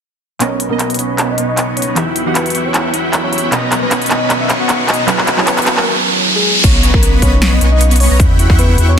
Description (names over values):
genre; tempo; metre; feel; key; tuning
future bass; 154 BPM; 4/4; swing 54% on 16ths, half-time; B major; A4 = 440 Hz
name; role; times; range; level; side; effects
soft octave-layered synth lead; melody; 0.4-9.0 s; G#4 to F#5; -22 LUFS; left 1 dB; chorus, sidechain pumping, digital delay
glassy digital keys; accompaniment; 0.4-6.7 s; B2 to F#5; -21 LUFS; right 2 dB; chorus, sidechain pumping, digital delay
shimmering ambient pad; sustained chords; 1.1-5.9 s; C#3 to F#4; -26 LUFS; left 1 dB; chorus, built-in reverb, sidechain pumping
dense compressed supersaw; riff; 0.4-9.0 s; B3 to C#6; -19 LUFS; equal; sidechain pumping, low-pass filter
saturated sub bass; bass; 0.4-9.0 s; F#1 to E2; -16 LUFS; equal; sidechain pumping, high-pass filter
big-room dance drum kit; drums; 0.4-8.9 s; crash cymbal, handclaps, hi-hat, snare drum; -16 LUFS; equal; overdrive
riser; sound effects; 3.1-6.6 s; none; -18 LUFS; right 1 dB; none
concert harp; arpeggios; 6.6-9.0 s; A#3 to G4; -23 LUFS; left 4 dB; sidechain pumping, digital delay
electronic kick drum; drums; 6.6-8.6 s; none; -12 LUFS; equal; overdrive
room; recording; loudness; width
light reverb, digital ambience; dense, heavily limited modern master; -10 LUFS; side -8 dB against mid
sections
0.4-6.6 A section; 6.6-9.0 B section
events
build-up 0.4-6.6; drum fill 0.4-5.9; filter sweep on supersaw synth 0.4-6.6; riser 3.1-6.6; drop 6.6-9.0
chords
0.4 Bmaj9; 2.0 Emadd9; 3.5 Bmaj9; 5.1 F#7sus4; 6.6 Bmaj9; 8.2 Emadd9